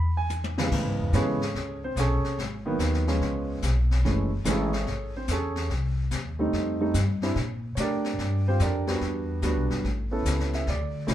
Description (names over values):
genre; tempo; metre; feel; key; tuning
jazz piano trio; 145 BPM; 4/4; swing 67% on 8ths; unclear; A4 = 439 Hz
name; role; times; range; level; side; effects
warm upright piano; melody; 0.0-11.1 s; C#3 to B5; -28 LUFS; right 2 dB; none
upright bass; bass; 0.0-11.1 s; F#1 to Bb2; -27 LUFS; equal; none
jazz brush drum kit; drums; 0.3-11.1 s; brushed snare drum, crash cymbal, hi-hat, kick drum, snare drum, toms; -34 LUFS; left 3 dB; none
room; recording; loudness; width
moderate club reverb, RT60 0.8 s; heard from further back in the room; -24 LUFS; side -12 dB against mid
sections
0.7-11.1 A section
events
drum fill 0.3-0.7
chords
0.0 E; 0.7 Amaj9; 2.4 G#m7; 3.2 C#7; 4.0 F#m9; 5.7 Cm; 6.5 F9; 7.4 Bb6; 9.0 Em9; 9.8 Aadd9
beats
0.30 | 0.72 1.13 1.55 1.96 | 2.38 2.79 3.21 3.62 | 4.04 4.45 4.87 5.28 | 5.70 6.11 6.52 6.94 | 7.35 7.77 8.18 8.60 | 9.01 9.43 9.84 10.25 | 10.67 11.08